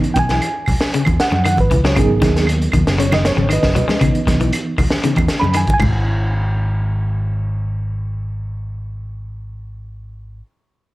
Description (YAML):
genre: afrobeat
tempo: 117 BPM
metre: 4/4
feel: straight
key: unclear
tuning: A4 = 440 Hz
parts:
  - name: mellow reed electric piano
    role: accompaniment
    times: 0.0-5.8 s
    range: E3 to B5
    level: -20 LUFS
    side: right 2 dB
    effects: fast tremolo
  - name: electric guitar at the edge of break-up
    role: arpeggios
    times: 0.0-6.1 s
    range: G#2 to G#3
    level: -21 LUFS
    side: left 4 dB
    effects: none
  - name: fingered electric bass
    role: bass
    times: 0.0-10.4 s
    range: F#1 to F#2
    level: -19 LUFS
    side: equal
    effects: none
  - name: crunchy breakbeat drum kit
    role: drums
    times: 0.0-5.9 s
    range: crash cymbal, hi-hat, kick drum, snare drum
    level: -20 LUFS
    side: equal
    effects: none
  - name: congas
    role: percussion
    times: 0.2-6.2 s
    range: none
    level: -22 LUFS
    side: right 1 dB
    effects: none
  - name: claves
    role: percussion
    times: 0.4-6.2 s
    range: none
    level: -27 LUFS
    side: right 3 dB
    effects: none
room: light reverb, small room reverb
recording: none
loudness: -14 LUFS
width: side -18 dB against mid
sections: 0.0-6.1 A section; 6.1-10.1 B section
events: reed electric piano solo 0.0-6.1; drum fill 5.7-6.1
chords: 0.0 C#m7; 2.0 G#m7; 4.0 C#m7; 5.8 N.C.